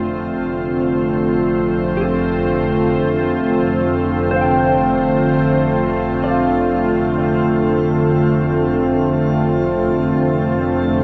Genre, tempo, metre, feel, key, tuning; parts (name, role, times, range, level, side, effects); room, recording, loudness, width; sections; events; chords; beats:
ambient; free time; A4 = 442 Hz
evolving wavetable pad; sustained chords; 0.0-11.0 s; D3 to C5; -18 LUFS; equal; chorus, built-in reverb, shimmer reverb
rich studio double bass section; bass; 0.0-11.0 s; F1; -30 LUFS; equal
organ-like drone; drone; 0.0-11.0 s; F3 to C4; -30 LUFS; equal; ensemble chorus, built-in reverb, phaser
mellow electric guitar; arpeggios; 2.0-7.9 s; A4 to G5; -26 LUFS; equal; analog delay, shimmer reverb
wet plate reverb, RT60 2.9 s; dreamy mix soaked in reverb; -17 LUFS; mono
0.0-7.5 A section; 7.5-11.0 B section
0.0 Dm7/F
free time